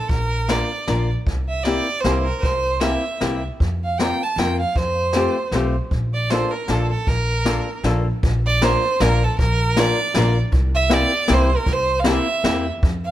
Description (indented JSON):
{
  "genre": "musette waltz",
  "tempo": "155 BPM",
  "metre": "3/4",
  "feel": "swing 55% on 8ths",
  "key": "Bb major",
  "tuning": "A4 = 440 Hz",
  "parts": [
    { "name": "clear violin", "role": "melody", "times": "0.0-13.1 s", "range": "A4 to A5", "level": "-22 LUFS", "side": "right 3 dB", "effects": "none" },
    { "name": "upright bass", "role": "bass", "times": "0.1-13.1 s", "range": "Bb1 to F2", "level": "-22 LUFS", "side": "equal", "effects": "none" },
    { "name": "jazz brush drum kit", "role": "drums", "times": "0.1-12.9 s", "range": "hi-hat, kick drum, snare drum", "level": "-24 LUFS", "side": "equal", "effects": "none" },
    { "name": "archtop guitar, miked and amplified", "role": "accompaniment", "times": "0.5-12.7 s", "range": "A3 to Bb4", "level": "-23 LUFS", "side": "left 3 dB", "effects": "none" }
  ],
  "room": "light reverb",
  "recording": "none",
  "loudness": "-17 LUFS",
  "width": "side -13 dB against mid",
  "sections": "0.0-8.2 A section; 8.2-13.1 A section",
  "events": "none",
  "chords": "0.0 Bb; 1.3 C7; 3.6 Fsus4; 4.8 Fadd9; 5.9 Bbmaj7; 8.2 Bb; 10.5 C7",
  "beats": "| 0.10 0.49 0.88 | 1.27 1.65 2.04 | 2.43 2.82 3.21 | 3.60 3.99 4.38 | 4.76 5.15 5.53 | 5.92 6.30 6.68 | 7.07 7.45 7.84 | 8.23 8.62 9.00 | 9.39 9.77 10.15 | 10.53 10.91 11.29 | 11.67 12.06 12.44 | 12.83"
}